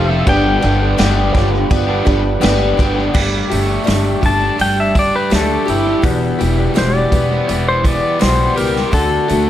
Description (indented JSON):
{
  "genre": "folk rock and heartland rock",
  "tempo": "83 BPM",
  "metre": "4/4",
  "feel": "straight",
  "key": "G mixolydian",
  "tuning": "A4 = 440 Hz",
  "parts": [
    { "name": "pedal steel guitar", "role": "melody", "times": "0.0-9.5 s", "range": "E4 to A5", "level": "-18 LUFS", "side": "left 1 dB", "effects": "analog delay" },
    { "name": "dark concert grand piano", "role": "accompaniment", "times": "0.0-3.0 s", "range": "D4 to D5", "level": "-29 LUFS", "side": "right 6 dB", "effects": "none" },
    { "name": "picked steel-string acoustic guitar", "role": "accompaniment", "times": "0.0-9.5 s", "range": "E2 to G4", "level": "-20 LUFS", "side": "left 5 dB", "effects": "analog delay" },
    { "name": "mellow tonewheel organ", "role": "sustained chords", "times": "0.0-3.1 s", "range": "D4 to B4", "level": "-27 LUFS", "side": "right 1 dB", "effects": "slow rotary speaker" },
    { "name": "crunchy overdriven guitar", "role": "riff", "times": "0.0-9.5 s", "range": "E2 to A4", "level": "-21 LUFS", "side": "right 2 dB", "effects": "none" },
    { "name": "upright bass", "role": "bass", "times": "0.0-9.5 s", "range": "E1 to D2", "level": "-18 LUFS", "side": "equal", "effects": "none" },
    { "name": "vintage drum kit", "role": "drums", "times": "0.3-9.5 s", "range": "crash cymbal, hi-hat, kick drum, snare drum", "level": "-19 LUFS", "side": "equal", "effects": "none" },
    { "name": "dark upright piano", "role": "second line", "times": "1.3-3.0 s", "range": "F4 to G5", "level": "-24 LUFS", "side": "right 8 dB", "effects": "none" }
  ],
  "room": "light reverb",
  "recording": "echo-heavy mix",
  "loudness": "-12 LUFS",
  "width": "side -12 dB against mid",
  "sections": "0.0-3.1 A section; 3.1-9.5 B section",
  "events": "pedal steel guitar solo 3.1-9.5",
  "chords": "0.3 G; 3.1 Gsus2; 6.0 Em; 8.9 D"
}